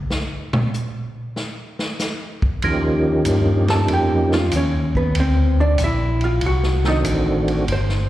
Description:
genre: soul jazz organ trio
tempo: 95 BPM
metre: 4/4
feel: swing 68% on 8ths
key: unclear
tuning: A4 = 440 Hz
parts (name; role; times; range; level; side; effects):
- vintage drum kit; drums; 0.1-8.1 s; hi-hat, kick drum, ride cymbal, snare drum, toms; -25 LUFS; equal; slapback echo
- percussive tonewheel organ; melody; 2.6-7.7 s; Eb3 to G4; -20 LUFS; right 1 dB; slow rotary speaker, chorus vibrato, slapback echo
- tonewheel organ; bass; 2.6-8.1 s; G1 to G2; -19 LUFS; equal; slow rotary speaker
- hollow-body jazz guitar; accompaniment; 3.7-8.1 s; B3 to A5; -22 LUFS; equal; slapback echo
room: light reverb, small room ambience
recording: live gig heard through the venue's PA, recital hall reverb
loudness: -17 LUFS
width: side -14 dB against mid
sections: 0.0-8.1 A section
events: hollow-body jazz guitar solo 0.0-8.1; drum solo 0.0-2.6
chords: 0.0 N.C.; 2.6 Eb7; 5.2 D7b9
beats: | 0.11 0.74 1.37 2.00 | 2.63 3.27 3.90 4.53 | 5.16 5.80 6.43 7.06 | 7.69

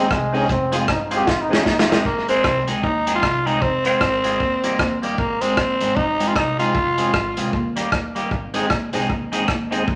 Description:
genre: ska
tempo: 153 BPM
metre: 4/4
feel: swing 60% on 8ths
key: Ab major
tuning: A4 = 440 Hz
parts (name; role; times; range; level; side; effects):
- bright trombone; melody; 0.0-2.0 s; Ab3 to G4; -25 LUFS; equal; none
- electric guitar at the edge of break-up; accompaniment; 0.0-9.9 s; G3 to Ab4; -27 LUFS; equal; phaser
- percussive tonewheel organ; stabs; 0.0-2.0, 8.5-9.8 s; C4 to Ab4; -29 LUFS; equal; overdrive, chorus vibrato, slow rotary speaker
- upright bass; bass; 0.0-10.0 s; F1 to Eb2; -31 LUFS; equal; none
- vintage drum kit; drums; 0.1-10.0 s; hi-hat, kick drum, rim click, snare drum; -25 LUFS; equal; tape echo
- growling tenor saxophone; melody; 2.1-7.7 s; Bb3 to F4; -22 LUFS; equal; none
room: wet large studio reverb, RT60 0.8 s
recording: none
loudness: -20 LUFS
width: mono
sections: 0.0-2.1 A section; 2.1-10.0 B section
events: trombone solo 0.0-2.1; drum fill 1.3-2.1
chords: 0.5 Fm; 1.3 Ab; 3.6 Fm; 4.4 Eb; 5.2 Ab; 6.7 Fm; 7.5 Eb; 8.3 Ab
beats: 0.11 | 0.50 0.89 1.28 1.67 | 2.06 2.45 2.84 3.23 | 3.62 4.01 4.40 4.79 | 5.18 5.57 5.96 6.36 | 6.75 7.14 7.53 7.92 | 8.31 8.71 9.10 9.49 | 9.88

